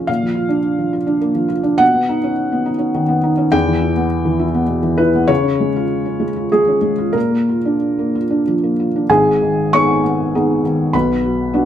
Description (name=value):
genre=neoclassical minimalist piano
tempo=90-106 BPM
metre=3/4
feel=rubato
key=G# minor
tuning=A4 = 441 Hz
part: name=felt-muted upright piano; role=solo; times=0.0-11.7 s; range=G#1 to C#6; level=-14 LUFS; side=equal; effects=none
room=moderate studio reverb, RT60 0.8 s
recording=band playing live in one room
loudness=-14 LUFS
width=side -10 dB against mid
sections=0.0-9.1 A section; 9.1-11.7 B section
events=none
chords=0.1 A#; 1.8 Badd9; 3.5 Em; 5.3 C#; 7.1 A#; 9.1 G#m; 10.9 Bm